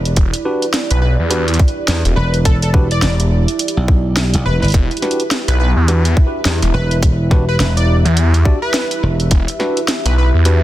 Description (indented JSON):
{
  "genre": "glitch hop",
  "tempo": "105 BPM",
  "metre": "4/4",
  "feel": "swing 60% on 16ths",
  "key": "E minor",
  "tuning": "A4 = 440 Hz",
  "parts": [
    { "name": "dark analog pad", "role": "sustained chords", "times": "0.0-10.6 s", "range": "E4 to E5", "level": "-24 LUFS", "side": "right 2 dB", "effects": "chorus, sidechain pumping" },
    { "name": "slap bass", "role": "bass", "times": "0.0-9.3 s", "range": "E1 to E2", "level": "-15 LUFS", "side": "equal", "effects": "none" },
    { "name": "drum and bass drum kit", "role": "drums", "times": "0.1-10.6 s", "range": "hi-hat, snare drum", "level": "-20 LUFS", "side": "equal", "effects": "studio reverb" },
    { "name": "phased detuned saw bass", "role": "bass", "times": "0.2-10.6 s", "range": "E1 to E2", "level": "-13 LUFS", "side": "equal", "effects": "phaser" },
    { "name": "electronic kick drum", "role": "drums", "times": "0.2-9.4 s", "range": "none", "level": "-12 LUFS", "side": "equal", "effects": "studio reverb" },
    { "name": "tine electric piano", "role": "stabs", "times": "0.5-10.6 s", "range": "D4 to D5", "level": "-23 LUFS", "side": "equal", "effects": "sidechain pumping, digital delay" },
    { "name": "plucky unison lead", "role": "melody", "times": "0.9-10.3 s", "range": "A4 to D5", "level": "-25 LUFS", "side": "equal", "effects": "analog chorus, digital delay" }
  ],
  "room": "digital ambience",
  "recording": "dense, heavily limited modern master",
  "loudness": "-12 LUFS",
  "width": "side -14 dB against mid",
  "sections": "0.0-10.6 A section",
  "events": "none",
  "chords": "0.0 Em7"
}